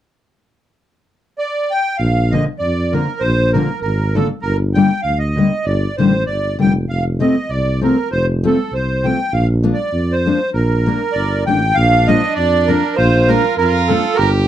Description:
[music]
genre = alpine folk, alpine dance band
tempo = 99 BPM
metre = 2/4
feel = swing 54% on 8ths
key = Bb major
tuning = A4 = 440 Hz
[part]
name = accordion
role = melody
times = 1.4-14.3 s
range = A4 to G5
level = -18 LUFS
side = right 2 dB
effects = light tremolo tuning
[part]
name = dark tuba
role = bass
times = 2.0-14.5 s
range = F1 to F2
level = -17 LUFS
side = equal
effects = none
[part]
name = fingerpicked steel-string acoustic guitar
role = accompaniment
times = 2.3-14.0 s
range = D3 to D4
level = -16 LUFS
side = left 3 dB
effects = none
[part]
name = bright trumpet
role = second line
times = 11.8-14.5 s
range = D4 to G4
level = -21 LUFS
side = right 4 dB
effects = none
[sound]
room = moderate small room reverb, RT60 0.5 s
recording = dark, warm production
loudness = -14 LUFS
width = side -11 dB against mid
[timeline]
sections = 0.8-2.0 A section; 2.0-11.8 B section; 11.8-14.5 B section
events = none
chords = 0.8 N.C.; 2.0 Bb; 4.4 Gm; 6.9 F; 9.3 Bb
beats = | 0.78 1.39 | 2.00 2.61 | 3.22 3.83 | 4.43 5.04 | 5.65 6.26 | 6.88 7.50 | 8.11 8.71 | 9.32 9.93 | 10.53 11.14 | 11.76 12.37 | 12.97 13.58 | 14.18

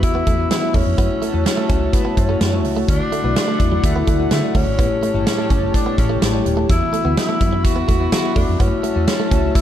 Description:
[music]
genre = 1980s-style pop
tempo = 126 BPM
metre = 4/4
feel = straight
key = D major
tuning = A4 = 440 Hz
[part]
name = growling tenor saxophone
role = melody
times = 0.0-9.6 s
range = A3 to F#4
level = -24 LUFS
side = right 1 dB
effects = tape echo
[part]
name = bell-like tine electric piano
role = accompaniment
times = 0.0-9.6 s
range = A2 to E5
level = -22 LUFS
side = left 5 dB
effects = none
[part]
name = chorused pulse-width pad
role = sustained chords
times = 0.0-9.6 s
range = E4 to B5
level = -28 LUFS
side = equal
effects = none
[part]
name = direct-recorded clean electric guitar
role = riff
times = 0.0-9.4 s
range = F#3 to C#4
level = -28 LUFS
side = right 6 dB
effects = lush chorus
[part]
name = vintage muted fingered electric bass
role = bass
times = 0.0-9.5 s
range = Eb1 to E3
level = -21 LUFS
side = equal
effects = none
[part]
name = huge arena drum kit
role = drums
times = 0.0-9.6 s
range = hi-hat, kick drum, snare drum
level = -19 LUFS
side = equal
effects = none
[sound]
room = light reverb, small room ambience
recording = dark, warm production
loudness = -15 LUFS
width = side -10 dB against mid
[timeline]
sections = 0.0-9.6 A section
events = none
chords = 0.0 Esus2; 1.0 F#m7; 2.9 Dadd9; 4.8 A7; 6.7 Esus2; 8.6 F#m7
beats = 0.03 0.51 | 0.98 1.46 1.93 2.41 | 2.89 3.36 3.84 4.31 | 4.79 5.27 5.74 6.22 | 6.70 7.17 7.65 8.12 | 8.60 9.08 9.55

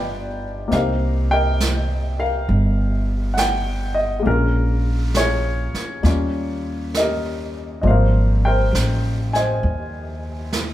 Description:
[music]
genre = jazz ballad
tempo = 67 BPM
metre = 4/4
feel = swing 66% on 8ths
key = unclear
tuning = A4 = 441 Hz
[part]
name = warm baby grand piano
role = accompaniment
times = 0.0-10.7 s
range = F3 to Ab5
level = -22 LUFS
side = left 1 dB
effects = none
[part]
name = upright bass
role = bass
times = 0.0-10.7 s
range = G1 to Eb2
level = -20 LUFS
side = equal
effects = none
[part]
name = jazz brush drum kit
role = drums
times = 0.7-10.7 s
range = brushed snare drum, hi-hat, snare drum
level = -28 LUFS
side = right 3 dB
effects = none
[sound]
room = light reverb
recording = band playing live in one room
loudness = -18 LUFS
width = side -13 dB against mid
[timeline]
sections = 0.0-10.7 A section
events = none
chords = 0.0 G7b13; 0.7 Cm7; 4.3 Bbm7; 6.0 Eb9; 7.8 Abmaj13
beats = | 0.71 1.60 2.49 3.37 | 4.26 5.15 6.04 6.94 | 7.84 8.74 9.63 10.52

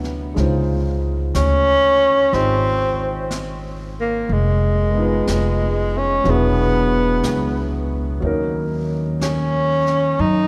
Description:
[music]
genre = jazz ballad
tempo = 61 BPM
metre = 4/4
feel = swing 68% on 8ths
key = unclear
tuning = A4 = 440 Hz
[part]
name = breathy tenor saxophone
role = melody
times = 0.0-10.5 s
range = Ab3 to Eb4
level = -21 LUFS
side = equal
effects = none
[part]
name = warm concert grand piano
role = accompaniment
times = 0.0-10.5 s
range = C3 to Eb5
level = -27 LUFS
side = equal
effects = none
[part]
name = upright bass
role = bass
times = 0.0-10.5 s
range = E1 to Gb2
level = -23 LUFS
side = equal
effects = none
[part]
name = jazz brush drum kit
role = drums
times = 0.0-10.5 s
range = brushed snare drum, hi-hat, snare drum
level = -36 LUFS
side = equal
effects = none
[sound]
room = wet cathedral reverb, RT60 4.8 s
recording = recorded in a church or concert hall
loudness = -19 LUFS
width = mono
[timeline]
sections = 0.0-10.5 A section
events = none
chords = 0.4 Dbmaj9; 4.3 Fm7b5; 6.2 E9; 8.2 Ebm7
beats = | 0.37 1.34 2.32 3.30 | 4.28 5.26 6.25 7.23 | 8.21 9.20 10.18

